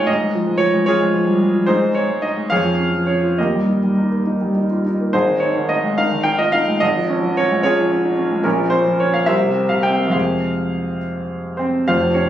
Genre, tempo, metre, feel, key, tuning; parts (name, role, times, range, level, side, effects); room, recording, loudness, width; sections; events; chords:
classical, romantic character piece for solo piano; 65-76 BPM (dotted quarters); 6/8; rubato; F minor from 8.4 s; A4 = 439 Hz
warm concert grand piano; solo; 0.0-12.3 s; F1 to G5; -15 LUFS; equal
moderate large studio reverb, RT60 1.4 s; recorded on a phone in the room, studio reverb; -15 LUFS; side -11 dB against mid
0.0-11.9 A section
0.1 Db/Ab; 1.7 Ab5; 2.5 Db/F; 3.4 Eb; 5.1 Ab5; 6.8 Db/Ab; 8.4 Bbm; 9.3 C7; 10.1 Fm